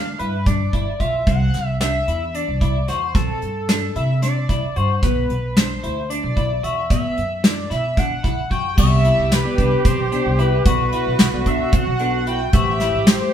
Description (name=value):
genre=progressive instrumental, band music in an uneven meter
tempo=224 BPM (eighths)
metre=7/8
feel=straight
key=unclear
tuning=A4 = 439 Hz
part: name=pulse-width lead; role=melody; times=0.0-13.3 s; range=A4 to G5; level=-24 LUFS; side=left 1 dB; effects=chorus
part: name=semi-hollow electric guitar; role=arpeggios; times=0.0-13.1 s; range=B3 to F#4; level=-26 LUFS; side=left 2 dB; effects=none
part: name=upright bass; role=bass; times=0.0-13.2 s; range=G1 to C3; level=-22 LUFS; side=equal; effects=none
part: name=soft brush drum kit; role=drums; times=0.2-13.2 s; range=crash cymbal, hi-hat, kick drum, snare drum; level=-18 LUFS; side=equal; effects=none
part: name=clear flugelhorn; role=second line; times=8.8-13.3 s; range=F#4 to G4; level=-24 LUFS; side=right 3 dB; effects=none
part: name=bell-like tine electric piano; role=accompaniment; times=8.8-13.3 s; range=C3 to D5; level=-28 LUFS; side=left 2 dB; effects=none
room=moderate stone room reverb, RT60 1.2 s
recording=band playing live in one room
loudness=-17 LUFS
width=side -9 dB against mid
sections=0.0-8.8 A section; 8.8-13.3 B section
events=none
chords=0.0 G; 1.3 C; 5.0 Bm; 8.8 Cmaj9; 10.7 Gmaj13/B (rootless); 12.5 Am9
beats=0.19 0.46 0.73 1.00 | 1.27 1.54 1.81 2.08 2.34 2.61 2.88 | 3.15 3.42 3.69 3.95 4.22 4.49 4.76 | 5.03 5.29 5.56 5.83 6.10 6.37 6.64 | 6.90 7.17 7.44 7.71 7.98 8.24 8.51 | 8.78 9.05 9.32 9.59 9.86 10.12 10.39 | 10.66 10.93 11.20 11.46 11.73 12.00 12.27 | 12.54 12.81 13.07